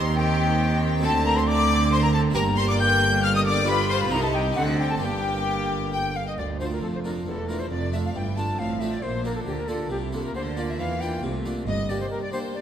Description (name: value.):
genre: classical, baroque-style concerto movement with solo episodes.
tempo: 136 BPM.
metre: 3/4.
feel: straight.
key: G minor, D minor from 6.4 s.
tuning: A4 = 442 Hz.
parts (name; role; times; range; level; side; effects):
clear chamber violin section; melody; 0.0-12.6 s; D4 to G6; -32 LUFS; left 3 dB; none.
harpsichord; accompaniment; 0.0-12.6 s; D2 to G4; -32 LUFS; equal; none.
rich chamber viola section; accompaniment; 0.0-12.6 s; A3 to F4; -32 LUFS; right 1 dB; none.
clear chamber cello section; bass; 0.0-12.0 s; D2 to E3; -29 LUFS; right 2 dB; none.
rich studio double bass section; bass; 0.0-12.0 s; E1 to E2; -27 LUFS; right 2 dB; none.
silver concert flute; melody; 0.2-12.6 s; G4 to G6; -28 LUFS; left 2 dB; none.
bright symphonic violin section; second line; 0.2-12.6 s; F#4 to A5; -31 LUFS; left 4 dB; none.
room: wet concert hall reverb, RT60 1.8 s.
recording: none.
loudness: -21 LUFS.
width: side -9 dB against mid.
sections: 0.0-6.4 A section; 6.4-12.6 B section.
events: none.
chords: 0.0 Cm/Eb; 1.0 D7; 2.3 Gm; 3.7 G7; 4.1 Cm; 4.6 D7; 5.0 Gm; 6.4 Dm; 7.7 Dm/F; 9.0 Bb; 10.3 Bb/D; 11.7 Gm.